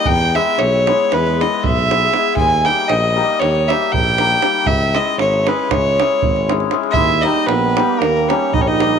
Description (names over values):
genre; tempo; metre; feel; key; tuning
balkan folk, Balkan wedding band; 235 BPM (eighths); 9/8; straight; unclear; A4 = 437 Hz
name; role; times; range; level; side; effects
rich fiddle; melody; 0.0-9.0 s; A#4 to G#5; -16 LUFS; equal; none
hammered dulcimer; accompaniment; 0.0-9.0 s; G3 to G#4; -21 LUFS; left 13 dB; none
warm tuba; bass; 0.1-9.0 s; G#1 to E2; -21 LUFS; equal; none
davul; percussion; 0.1-8.9 s; none; -22 LUFS; right 6 dB; none
mellow clarinet; second line; 7.0-9.0 s; A#3 to E4; -19 LUFS; right 12 dB; none
room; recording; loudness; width
moderate plate reverb, RT60 3.0 s; 1960s-style stereo with parts hard left and right; -13 LUFS; side -7 dB against mid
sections
0.0-7.0 A section; 7.0-9.0 A section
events
none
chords
0.1 E; 2.4 D#; 4.7 C#m; 7.0 D#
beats
| 0.06 0.32 0.57 0.83 1.08 1.34 1.59 1.85 2.10 | 2.36 2.61 2.87 3.12 3.38 3.63 3.89 4.14 4.40 | 4.65 4.91 5.16 5.42 5.67 5.93 6.18 6.44 6.70 | 6.95 7.21 7.46 7.72 7.97 8.23 8.48 8.74